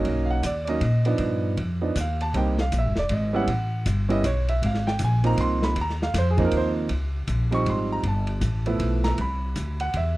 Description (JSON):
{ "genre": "jazz, small-group swing and bop", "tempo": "158 BPM", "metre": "3/4", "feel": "swing 64% on 8ths", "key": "unclear", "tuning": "A4 = 440 Hz", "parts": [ { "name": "clear baby grand piano", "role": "accompaniment", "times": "0.0-10.2 s", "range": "F3 to Db6", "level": "-26 LUFS", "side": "right 2 dB", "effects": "none" }, { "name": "upright bass", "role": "bass", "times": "0.0-10.2 s", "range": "Eb1 to A#2", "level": "-24 LUFS", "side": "equal", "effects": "none" }, { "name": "vintage drum kit", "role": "drums", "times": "0.0-10.1 s", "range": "hi-hat, kick drum, ride cymbal, snare drum", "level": "-33 LUFS", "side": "equal", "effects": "none" } ], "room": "little or no reverb", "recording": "dry, close 1970s-style studio recording", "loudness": "-22 LUFS", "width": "side -18 dB against mid", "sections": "0.0-6.9 A section; 6.9-10.2 A section", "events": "none", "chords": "0.0 Bmaj9; 1.2 G7b13; 2.3 Cm7; 3.5 A9; 4.6 Ab69; 6.9 Dbmaj9#11; 8.0 G13; 9.2 Cmaj9", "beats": "| 0.05 0.43 0.81 | 1.19 1.57 1.95 | 2.33 2.71 3.10 | 3.48 3.86 4.24 | 4.62 5.00 5.38 | 5.76 6.14 6.52 | 6.90 7.28 7.66 | 8.04 8.42 8.80 | 9.18 9.56 9.94" }